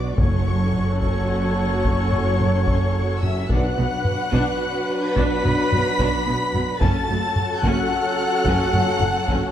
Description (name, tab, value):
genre	cinematic, epic orchestral film score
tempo	73 BPM (dotted quarters)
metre	12/8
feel	straight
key	unclear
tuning	A4 = 440 Hz
part	warm symphonic violin section	melody	0.0-9.5 s	C#6 to B6	-31 LUFS	left 2 dB	none
part	small flute group	second line	0.0-9.5 s	C#5 to B5	-29 LUFS	left 4 dB	none
part	warm symphonic violin section	second line	0.0-9.5 s	C#5 to B5	-30 LUFS	left 1 dB	none
part	rich symphonic viola section	accompaniment	0.0-9.5 s	F#3 to B4	-30 LUFS	right 1 dB	none
part	dark symphonic string section	sustained chords	0.0-9.5 s	C#4 to F#5	-29 LUFS	equal	none
part	mellow trumpet	stabs	0.0-9.5 s	F#4 to B4	-30 LUFS	right 1 dB	none
part	clear symphonic double bass section	bass	0.0-9.4 s	F#1 to B1	-27 LUFS	right 2 dB	none
part	warm symphonic cello section	bass	0.0-9.4 s	F#2 to B2	-26 LUFS	right 2 dB	none
part	mellow French horn section	sustained chords	0.2-9.5 s	F#3 to D4	-30 LUFS	left 5 dB	none
part	solo taiko drums	drums	0.2-9.5 s	none	-25 LUFS	equal	none
part	timpani	percussion	0.2-4.3 s	F#2 to B2	-27 LUFS	left 1 dB	none
room	wet recital hall reverb, RT60 1.6 s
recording	dark, warm production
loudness	-18 LUFS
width	side -10 dB against mid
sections	0.0-9.5 A section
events	none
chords	0.2 F#m; 3.5 Bm; 6.8 F#m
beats	| 0.18 1.01 1.84 2.67 | 3.49 4.32 5.16 5.99 | 6.81 7.64 8.46 9.29